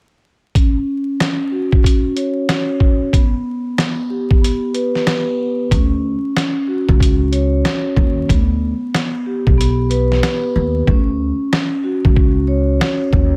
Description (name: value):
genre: hip hop, boom-bap hip-hop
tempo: 93 BPM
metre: 4/4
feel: swing 62% on 16ths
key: D major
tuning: A4 = 440 Hz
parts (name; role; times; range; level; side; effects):
- vibraphone with soft mallets; accompaniment; 0.6-13.4 s; B3 to C#5; -21 LUFS; equal; high-pass filter, low-pass filter
- trip hop sampler-style drum kit; drums; 0.6-13.3 s; hi-hat, kick drum, snare drum; -18 LUFS; equal; none
- upright bass; bass; 5.7-13.4 s; B1 to Eb2; -20 LUFS; equal; none
room: studio reverb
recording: vinyl crackle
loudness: -17 LUFS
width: mono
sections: 0.6-10.9 A section; 10.9-13.4 B section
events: filter sweep on vibraphone 0.6-10.9; kick muted 9.6-10.9; hi-hats muted 10.9-13.4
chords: 0.6 C#sus4; 3.1 G; 5.7 Dmaj7; 8.3 G; 10.9 Dmaj7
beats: | 0.55 1.20 1.84 2.49 | 3.13 3.78 4.42 5.07 | 5.71 6.36 7.00 7.65 | 8.29 8.94 9.58 10.23 | 10.87 11.52 12.16 12.81